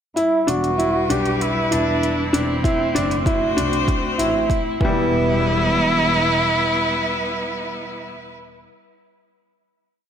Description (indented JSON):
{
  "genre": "piano and strings electronica",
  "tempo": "97 BPM",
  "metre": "4/4",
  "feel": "straight",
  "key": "E minor",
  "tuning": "A4 = 437 Hz",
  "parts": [
    { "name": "rich cello", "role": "melody", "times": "0.2-8.0 s", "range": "C4 to G4", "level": "-22 LUFS", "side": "right 1 dB", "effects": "low-pass filter" },
    { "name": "clear string quartet", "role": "sustained chords", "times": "0.2-8.4 s", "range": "G3 to C5", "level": "-25 LUFS", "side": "left 1 dB", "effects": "sidechain pumping" },
    { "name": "clear upright piano", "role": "riff", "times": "0.2-8.2 s", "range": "E3 to E4", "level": "-22 LUFS", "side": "equal", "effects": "digital delay" },
    { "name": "electronic hi-hat", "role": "drums", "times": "0.2-4.6 s", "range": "none", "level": "-31 LUFS", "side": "right 2 dB", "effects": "overdrive, high-pass filter on hats, small room reverb" },
    { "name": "dark chamber double bass section", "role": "bass", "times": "0.5-6.9 s", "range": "E1 to C2", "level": "-26 LUFS", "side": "equal", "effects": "sidechain pumping" },
    { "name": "electronic kick drum", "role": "drums", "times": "2.6-4.9 s", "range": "none", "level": "-21 LUFS", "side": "equal", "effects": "overdrive, small room reverb" }
  ],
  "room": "moderate echo chamber reverb, RT60 2.5 s",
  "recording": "none",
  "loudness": "-17 LUFS",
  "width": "side -8 dB against mid",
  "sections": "0.2-5.1 build; 5.1-7.6 final chord",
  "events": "build-up 0.2-5.1; filter sweep on cello 0.2-5.1",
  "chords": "0.2 Em; 2.6 F#dim; 3.9 Am; 4.8 Em"
}